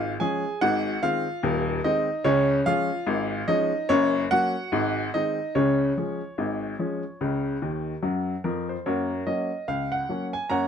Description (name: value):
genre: ragtime piano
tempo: 73 BPM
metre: 2/4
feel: swing 58% on 16ths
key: Db major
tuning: A4 = 440 Hz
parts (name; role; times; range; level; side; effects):
- clear upright piano; solo; 0.0-10.7 s; Eb1 to A#5; -23 LUFS; equal; none
room: moderate studio reverb, RT60 0.6 s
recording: close, detailed microphones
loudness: -23 LUFS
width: side -8 dB against mid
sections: 0.0-8.9 A section; 8.9-10.7 B section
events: upright piano fill 7.6-8.9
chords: 0.0 Db; 0.6 Ab7; 2.2 Db; 3.9 Gb; 4.7 Ab7; 5.5 Db; 8.9 F#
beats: | 0.61 1.43 | 2.25 3.07 | 3.89 4.72 | 5.54 6.37 | 7.20 8.03 | 8.86 9.68 | 10.50